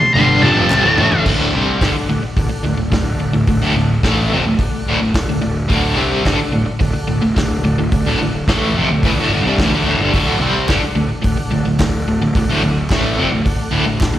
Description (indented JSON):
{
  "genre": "garage rock duo or trio",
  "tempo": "108 BPM",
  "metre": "4/4",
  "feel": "straight",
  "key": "D mixolydian",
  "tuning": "A4 = 441 Hz",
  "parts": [
    { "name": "octave-fuzz lead guitar", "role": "melody", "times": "0.0-1.2 s", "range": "A5 to C6", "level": "-14 LUFS", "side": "equal", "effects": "distortion, slapback echo" },
    { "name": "combo organ", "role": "sustained chords", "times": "0.0-14.2 s", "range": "A4 to F#5", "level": "-29 LUFS", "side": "equal", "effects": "wide subtle chorus" },
    { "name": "vintage drum kit", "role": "drums", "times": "0.0-14.1 s", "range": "crash cymbal, hi-hat, kick drum, snare drum, toms", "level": "-20 LUFS", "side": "equal", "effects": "none" },
    { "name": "fuzz picked electric bass", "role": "bass", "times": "0.1-14.2 s", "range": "D1 to D2", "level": "-21 LUFS", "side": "equal", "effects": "overdrive" },
    { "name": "crunchy overdriven guitar", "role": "riff", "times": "0.2-14.2 s", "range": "D2 to C4", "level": "-16 LUFS", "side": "equal", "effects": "tremolo, slapback echo" },
    { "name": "group handclap", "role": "percussion", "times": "0.7-0.8, 10.7-14.1 s", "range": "none", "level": "-29 LUFS", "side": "right 1 dB", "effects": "none" }
  ],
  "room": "light reverb",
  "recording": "live gig heard through the venue's PA, recital hall reverb",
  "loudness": "-13 LUFS",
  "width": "side -12 dB against mid",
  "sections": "0.0-1.3 A section; 1.3-14.2 B section",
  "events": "drum fill 0.0-1.3; lead electric guitar solo 0.0-1.3",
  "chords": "0.0 D"
}